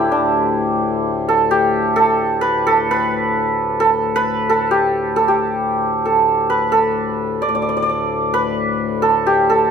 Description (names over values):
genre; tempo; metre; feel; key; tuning
indian classical; 132 BPM; 4/4; straight; D raga durga; A4 = 440 Hz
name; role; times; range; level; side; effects
santur; melody; 0.0-9.7 s; D4 to D5; -15 LUFS; right 2 dB; none
pedal harmonium; drone; 0.0-9.7 s; D2 to A2; -24 LUFS; left 8 dB; none
room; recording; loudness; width
light reverb; close, detailed microphones; -15 LUFS; side -7 dB against mid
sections
0.0-7.4 A section; 7.4-9.7 B section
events
none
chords
none